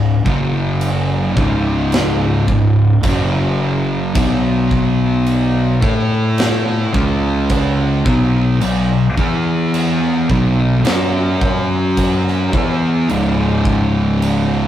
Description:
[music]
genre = stoner and doom metal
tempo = 54 BPM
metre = 4/4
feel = straight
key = C# minor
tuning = A4 = 442 Hz
[part]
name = thick fuzz guitar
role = riff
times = 0.0-14.7 s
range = C#2 to A4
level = -17 LUFS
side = left 3 dB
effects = distortion
[part]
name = thick fuzz guitar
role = riff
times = 0.0-14.7 s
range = C#2 to A4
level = -20 LUFS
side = right 5 dB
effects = distortion
[part]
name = fuzz fingered electric bass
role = bass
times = 0.0-14.7 s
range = C#1 to A2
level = -21 LUFS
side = equal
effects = overdrive
[part]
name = big rock drum kit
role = drums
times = 0.3-14.5 s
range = crash cymbal, kick drum, snare drum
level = -21 LUFS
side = right 1 dB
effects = none
[sound]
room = light reverb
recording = rough rehearsal-room recording, warm saturation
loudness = -13 LUFS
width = side -11 dB against mid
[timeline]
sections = 0.0-14.7 A section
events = none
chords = 0.3 F#5; 1.4 C#5; 3.0 F#5; 4.2 B5; 5.8 A5; 6.9 C#5; 8.1 B5; 9.2 E5; 10.3 B5; 10.9 F#5; 12.5 E5; 13.1 C#5

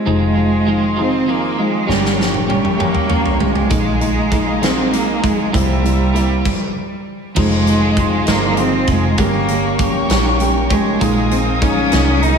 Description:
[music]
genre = six-eight pop ballad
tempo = 66 BPM (dotted quarters)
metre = 6/8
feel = straight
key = F minor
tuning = A4 = 444 Hz
[part]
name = rich cello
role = melody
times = 0.0-12.4 s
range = F3 to Eb4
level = -18 LUFS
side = right 2 dB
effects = slapback echo, digital delay
[part]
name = felt-muted upright piano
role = accompaniment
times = 0.0-12.4 s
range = F3 to E4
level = -21 LUFS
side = left 3 dB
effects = slapback echo
[part]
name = muted symphonic string section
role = sustained chords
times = 0.1-12.4 s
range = G4 to Eb6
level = -24 LUFS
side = left 1 dB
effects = none
[part]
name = twelve-string electric guitar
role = arpeggios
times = 0.1-12.4 s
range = F2 to G4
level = -26 LUFS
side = right 8 dB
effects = tremolo, slapback echo
[part]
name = vintage muted fingered electric bass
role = bass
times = 0.1-12.4 s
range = F1 to C2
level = -20 LUFS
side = equal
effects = none
[part]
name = huge arena drum kit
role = drums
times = 1.9-12.4 s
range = crash cymbal, hi-hat, kick drum, snare drum, toms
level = -19 LUFS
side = equal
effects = none
[sound]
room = moderate scoring stage reverb, RT60 1.9 s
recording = big arena sound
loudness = -13 LUFS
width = side -6 dB against mid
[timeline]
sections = 0.1-7.4 A section; 7.4-12.4 B section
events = drum fill 1.9-3.7; stop 6.5-7.4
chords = 0.1 Fm7; 1.9 Gdim; 3.7 Bb7sus4; 5.5 C7; 7.4 Fm7; 9.2 Gdim; 11.0 Bb7sus4

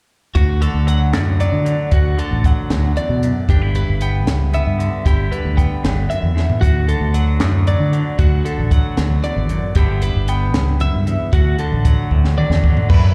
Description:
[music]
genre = math rock and midwest emo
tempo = 76 BPM (dotted quarters)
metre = 6/8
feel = straight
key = D major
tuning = A4 = 441 Hz
[part]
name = twelve-string electric guitar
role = arpeggios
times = 0.3-13.1 s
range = F#4 to G5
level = -28 LUFS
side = equal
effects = slapback echo
[part]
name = fingered electric bass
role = bass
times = 0.3-13.1 s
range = G1 to D3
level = -19 LUFS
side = equal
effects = none
[part]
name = twangy electric guitar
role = accompaniment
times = 0.4-13.1 s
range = D2 to F#4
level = -26 LUFS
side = equal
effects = spring reverb
[part]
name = compact cocktail drum kit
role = drums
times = 0.4-13.0 s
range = crash cymbal, hi-hat, kick drum, snare drum, toms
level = -19 LUFS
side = equal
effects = none
[sound]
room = small room ambience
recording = live gig heard through the venue's PA, recital hall reverb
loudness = -17 LUFS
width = mono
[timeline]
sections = 0.3-12.9 A section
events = drum fill 6.4, 12.1-12.9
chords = 0.3 D; 3.5 G6; 6.6 D; 9.8 G6; 11.3 D

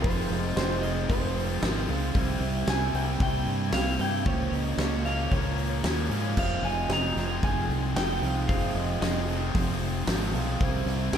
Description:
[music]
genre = post-rock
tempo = 114 BPM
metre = 4/4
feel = straight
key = F minor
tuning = A4 = 439 Hz
[part]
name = clean lap steel guitar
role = melody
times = 0.0-11.2 s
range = C5 to Bb5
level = -33 LUFS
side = right 1 dB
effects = ping-pong delay
[part]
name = airy breathy pad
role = sustained chords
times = 0.0-11.2 s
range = C3 to E5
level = -39 LUFS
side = equal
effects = none
[part]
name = vibraphone with medium mallets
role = arpeggios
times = 0.0-11.2 s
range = C5 to F5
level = -40 LUFS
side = right 3 dB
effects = ping-pong delay
[part]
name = sludgy distorted guitar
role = riff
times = 0.0-11.2 s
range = F2 to C4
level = -32 LUFS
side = right 7 dB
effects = overdrive
[part]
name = tight distorted guitar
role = riff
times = 0.0-11.2 s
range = F2 to F4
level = -34 LUFS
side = left 7 dB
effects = distortion
[part]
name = growling fingered electric bass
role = bass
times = 0.0-11.2 s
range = F1 to Ab2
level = -30 LUFS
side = left 1 dB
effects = overdrive
[part]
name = huge arena drum kit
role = drums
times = 0.0-11.2 s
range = crash cymbal, hi-hat, kick drum, snare drum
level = -30 LUFS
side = equal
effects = none
[sound]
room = wet lush hall reverb, RT60 1.7 s, small room ambience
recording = dreamy mix soaked in reverb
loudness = -24 LUFS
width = side -8 dB against mid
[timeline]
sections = 0.0-11.2 A section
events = none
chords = 0.0 Fm7; 2.1 C7; 4.3 Bbmadd9/Db; 6.4 Fm7; 10.6 C7

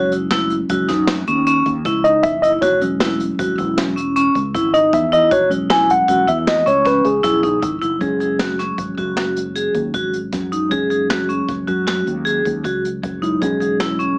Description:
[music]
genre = progressive instrumental, band music in an uneven meter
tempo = 156 BPM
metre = 7/4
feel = straight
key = unclear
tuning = A4 = 440 Hz
[part]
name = mellow tine electric piano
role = accompaniment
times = 0.0-14.2 s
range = F#3 to G#5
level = -18 LUFS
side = equal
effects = slow stereo tremolo
[part]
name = vibraphone with hard mallets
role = arpeggios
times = 0.0-14.2 s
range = C#4 to G#4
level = -18 LUFS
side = equal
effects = tape echo
[part]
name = fretless electric bass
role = bass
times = 0.0-14.1 s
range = E1 to F#2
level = -27 LUFS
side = equal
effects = analog chorus
[part]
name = jazz brush drum kit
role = drums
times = 0.1-14.1 s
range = hi-hat, kick drum, snare drum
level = -25 LUFS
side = equal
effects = none
[sound]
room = moderate studio reverb, RT60 0.5 s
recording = small speaker sound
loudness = -15 LUFS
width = side -35 dB against mid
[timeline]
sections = 0.0-8.0 A section; 8.0-14.2 B section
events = tine electric piano solo 0.0-8.0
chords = 0.0 F#sus2; 2.6 E6; 8.0 F#sus2; 13.4 E6

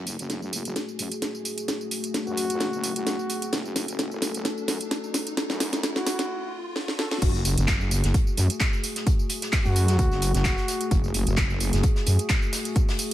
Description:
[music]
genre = bass house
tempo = 130 BPM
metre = 4/4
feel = swing 54% on 16ths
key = F# minor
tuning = A4 = 441 Hz
[part]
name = dark analog pad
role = sustained chords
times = 0.2-13.1 s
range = A3 to A4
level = -33 LUFS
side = left 2 dB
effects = chorus, sidechain pumping
[part]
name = wobble bass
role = bass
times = 0.0-12.2 s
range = F#1 to F#2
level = -25 LUFS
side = equal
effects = chorus, overdrive, sidechain pumping, high-pass filter
[part]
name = riser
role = sound effects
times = 0.0-7.2 s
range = none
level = -39 LUFS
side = left 1 dB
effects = none
[part]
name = house drum kit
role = drums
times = 0.1-13.1 s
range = crash cymbal, handclaps, hi-hat, snare drum, tambourine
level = -28 LUFS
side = equal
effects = none
[part]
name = trumpet with bucket mute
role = melody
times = 2.3-11.0 s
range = F#4 to A4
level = -31 LUFS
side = equal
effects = tape echo
[part]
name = electronic kick drum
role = drums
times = 7.2-12.9 s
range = none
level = -24 LUFS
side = equal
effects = none
[part]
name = loose indie drum kit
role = drums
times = 7.2-13.1 s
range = hi-hat, snare drum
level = -38 LUFS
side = left 2 dB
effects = high-pass filter on hats, high-pass filter on snare, high-pass filter on room
[sound]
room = studio ambience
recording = high-pass filter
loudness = -23 LUFS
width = side -13 dB against mid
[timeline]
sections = 0.0-7.2 A section; 7.2-13.1 B section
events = build-up 0.0-7.2; drum fill 0.0-6.3, 6.8-7.2; riser 0.0-7.2; break 6.3-7.2; drop 7.2-13.1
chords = 0.0 F#madd9

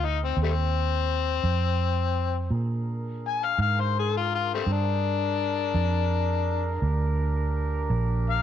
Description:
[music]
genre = slow blues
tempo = 56 BPM (dotted quarters)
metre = 12/8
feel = straight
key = unclear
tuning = A4 = 440 Hz
[part]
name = overdriven harmonica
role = melody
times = 0.0-8.4 s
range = G3 to Ab5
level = -27 LUFS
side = left 10 dB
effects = none
[part]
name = vintage muted fingered electric bass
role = bass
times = 0.0-8.4 s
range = Bb1 to Bb2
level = -26 LUFS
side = right 2 dB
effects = none
[part]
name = mellow horn section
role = sustained chords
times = 2.5-8.4 s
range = D4 to Bb4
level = -34 LUFS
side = right 2 dB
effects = none
[sound]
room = light reverb, small room ambience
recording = none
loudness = -24 LUFS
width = side -10 dB against mid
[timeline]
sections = 0.0-8.4 A section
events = harmonica solo 0.0-8.4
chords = 0.0 F5; 2.5 Bb7

